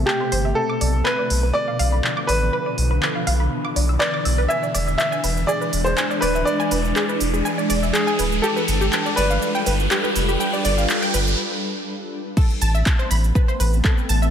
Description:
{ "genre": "progressive house", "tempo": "122 BPM", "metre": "4/4", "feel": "straight", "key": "A minor", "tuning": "A4 = 440 Hz", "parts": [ { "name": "clear grand piano", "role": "melody", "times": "0.0-11.8 s", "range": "G4 to E5", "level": "-24 LUFS", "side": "equal", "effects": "sidechain pumping, ping-pong delay" }, { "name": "shimmering ambient pad", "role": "sustained chords", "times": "0.0-14.3 s", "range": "B2 to B4", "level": "-26 LUFS", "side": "equal", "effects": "chorus, built-in reverb, sidechain pumping" }, { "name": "saturated sub bass", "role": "bass", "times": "0.0-14.3 s", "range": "D1 to B1", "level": "-21 LUFS", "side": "equal", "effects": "sidechain pumping" }, { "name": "riser", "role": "sound effects", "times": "2.0-11.4 s", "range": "none", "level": "-30 LUFS", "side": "equal", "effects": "none" }, { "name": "wide unison pluck", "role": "arpeggios", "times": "0.1-14.3 s", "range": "G4 to A6", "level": "-26 LUFS", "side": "equal", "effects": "sidechain pumping, ping-pong delay" }, { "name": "deep house drum kit", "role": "drums", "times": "0.1-14.3 s", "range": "crash cymbal, handclaps, hi-hat, shaker", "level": "-26 LUFS", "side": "right 1 dB", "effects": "sidechain pumping on perc, sidechain pumping on hats, sidechain pumping on cymbals" }, { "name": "electronic kick drum", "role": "drums", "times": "12.4-13.9 s", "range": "none", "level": "-17 LUFS", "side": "equal", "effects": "none" } ], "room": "moderate lush hall reverb, RT60 2.0 s", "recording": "none", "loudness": "-18 LUFS", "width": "side -8 dB against mid", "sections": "0.0-12.4 A section; 12.4-14.3 B section", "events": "build-up 0.0-12.4; riser 2.0-11.4; break 11.4-12.4; drop 12.4-14.3", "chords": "0.0 Amadd9; 0.6 Bdim; 4.5 E7; 8.4 G7; 12.4 Amadd9", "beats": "0.07 | 0.57 1.06 1.55 2.04 | 2.53 3.02 3.52 4.01 | 4.50 4.99 5.48 5.98 | 6.47 6.96 7.45 7.94 | 8.44 8.93 9.42 9.91 | 10.40 10.89 11.39 11.88 | 12.37 12.86 13.35 13.85" }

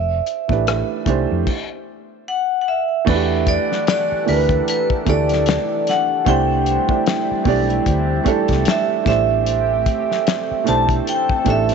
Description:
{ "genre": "R&B, neo-soul", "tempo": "75 BPM", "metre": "4/4", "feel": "swing 57% on 16ths", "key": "E minor", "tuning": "A4 = 440 Hz", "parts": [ { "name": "vibraphone with hard mallets", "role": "melody", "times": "0.0-11.7 s", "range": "B4 to A5", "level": "-20 LUFS", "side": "equal", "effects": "tape echo" }, { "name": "hollow-body short-scale fingered electric bass", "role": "bass", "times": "0.0-11.7 s", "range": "F1 to F2", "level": "-21 LUFS", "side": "left 1 dB", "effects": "none" }, { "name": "cloth-damped thuddy drum kit", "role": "drums", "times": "0.3-11.7 s", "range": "crash cymbal, hi-hat, kick drum, rim click, snare drum", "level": "-22 LUFS", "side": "left 4 dB", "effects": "none" }, { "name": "dark upright piano", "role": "accompaniment", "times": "0.5-11.7 s", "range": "E3 to D5", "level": "-21 LUFS", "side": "right 11 dB", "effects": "none" }, { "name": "lush unison pad", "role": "sustained chords", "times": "3.4-11.7 s", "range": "E3 to F#5", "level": "-27 LUFS", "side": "left 1 dB", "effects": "chorus" } ], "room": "light reverb, small room ambience", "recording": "1960s-style stereo, nothing above 7.9 kHz", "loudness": "-16 LUFS", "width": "side -6 dB against mid", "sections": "0.0-3.1 A section; 3.1-11.7 B section", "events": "stop 1.5-3.1", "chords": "0.0 Fmaj9; 1.5 N.C.; 3.1 Em11; 6.3 Cmaj9; 9.1 Am9", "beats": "0.67 1.47 2.27 | 3.07 3.87 4.67 5.47 | 6.27 7.07 7.87 8.67 | 9.47 10.27 11.07" }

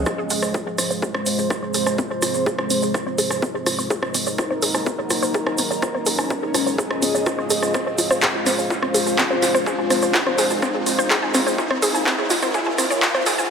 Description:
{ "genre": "melodic techno", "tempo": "125 BPM", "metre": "4/4", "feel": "straight", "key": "F phrygian", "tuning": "A4 = 442 Hz", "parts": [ { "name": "deep dark ambient pad", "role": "sustained chords", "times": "0.0-13.5 s", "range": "Ab3 to Gb5", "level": "-27 LUFS", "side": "left 2 dB", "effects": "chorus, built-in reverb, sidechain pumping" }, { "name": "wide unison pluck", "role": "arpeggios", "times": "0.0-13.4 s", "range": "C4 to Ab5", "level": "-24 LUFS", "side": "equal", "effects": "cassette tape, sidechain pumping, analog delay" }, { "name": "airy breathy pad", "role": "texture", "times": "0.0-13.5 s", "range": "Db4 to Eb5", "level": "-26 LUFS", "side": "right 1 dB", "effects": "chorus, sidechain pumping" }, { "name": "electronic kick drum", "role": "drums", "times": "0.1-13.1 s", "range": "none", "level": "-28 LUFS", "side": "equal", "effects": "overdrive, high-pass filter on kick, high-pass filter on room" }, { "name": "house drum kit", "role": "drums", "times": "0.1-13.4 s", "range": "handclaps, hi-hat, rim click", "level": "-23 LUFS", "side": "equal", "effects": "overdrive, sidechain pumping on hats, dub echo" }, { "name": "tube shaker", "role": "percussion", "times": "0.1-13.5 s", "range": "none", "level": "-28 LUFS", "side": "right 4 dB", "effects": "none" }, { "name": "riser", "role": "sound effects", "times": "5.0-13.5 s", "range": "none", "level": "-30 LUFS", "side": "equal", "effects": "none" } ], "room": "moderate echo chamber reverb, RT60 2.2 s", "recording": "echo-heavy mix, high-pass filter", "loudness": "-18 LUFS", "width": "side -6 dB against mid", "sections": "0.1-13.5 A section", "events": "build-up 0.1-13.5; filter sweep on synth arpeggio sound 0.1-13.5; filter sweep on ambient pad 0.1-13.5; riser 5.0-13.5", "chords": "0.1 Fm; 3.9 Ebm; 5.8 Db; 7.7 Fm; 11.6 Ebm", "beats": "| 0.06 0.54 1.02 1.50 | 1.98 2.46 2.94 3.42 | 3.90 4.38 4.86 5.34 | 5.82 6.30 6.78 7.26 | 7.74 8.22 8.70 9.18 | 9.66 10.14 10.62 11.10 | 11.58 12.06 12.54 13.02" }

